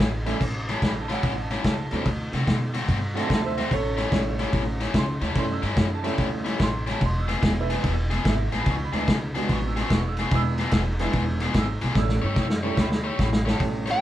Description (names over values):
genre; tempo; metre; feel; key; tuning
electric blues shuffle; 145 BPM; 4/4; swing 65% on 8ths; A mixolydian; A4 = 440 Hz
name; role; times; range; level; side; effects
overdriven electric guitar; riff; 0.0-14.0 s; A2 to C#5; -30 LUFS; left 4 dB; none
upright bass; bass; 0.0-13.9 s; E1 to C3; -28 LUFS; equal; none
vintage drum kit; drums; 0.0-13.9 s; crash cymbal, kick drum, ride cymbal, snare drum; -25 LUFS; equal; none
clear upright piano; accompaniment; 0.3-14.0 s; F#3 to E6; -31 LUFS; right 4 dB; none
smooth overdriven lead guitar; melody; 13.9-14.0 s; G5; -21 LUFS; right 1 dB; none
room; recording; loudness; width
light reverb; band playing live in one room; -22 LUFS; side -13 dB against mid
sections
0.4-13.6 A section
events
drum fill 12.0-13.6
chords
0.4 A7; 2.1 D7; 3.7 A7; 7.0 E7; 12.0 A7